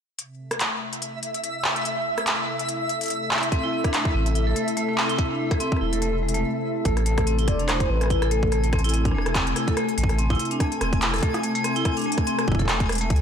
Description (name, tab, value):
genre	IDM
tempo	144 BPM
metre	4/4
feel	swing 56% on 16ths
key	unclear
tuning	A4 = 442 Hz
part	warm analog pad	sustained chords	0.2-13.2 s	C3 to A4	-30 LUFS	left 2 dB	chorus
part	organic electronic drum kit	drums	0.2-13.2 s	handclaps, hi-hat, rim click	-27 LUFS	equal	ping-pong delay
part	twinkling granular texture	texture	0.7-13.2 s	E5 to G#5	-31 LUFS	equal	built-in reverb
part	vibraphone with hard mallets	arpeggios	3.5-13.2 s	G#3 to A4	-28 LUFS	right 1 dB	vintage 12-bit sampler grit, ping-pong delay
part	electronic kick drum	drums	3.5-13.2 s	none	-24 LUFS	equal	none
part	warm sub bass	bass	4.1-13.2 s	E1 to D2	-24 LUFS	equal	none
part	warm velvety synth lead	melody	6.9-9.1 s	A4 to D5	-28 LUFS	left 2 dB	chorus, vintage 12-bit sampler grit, tape echo
room	light reverb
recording	blown-out, overdriven recording, overdrive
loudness	-21 LUFS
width	side -8 dB against mid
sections	0.2-6.9 A section; 6.9-13.2 B section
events	none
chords	0.2 Am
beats	| 0.19 0.60 1.02 1.44 | 1.85 2.27 2.69 3.10 | 3.52 3.94 4.35 4.77 | 5.19 5.60 6.02 6.44 | 6.85 7.27 7.69 8.10 | 8.52 8.94 9.35 9.77 | 10.19 10.60 11.02 11.44 | 11.85 12.27 12.69 13.10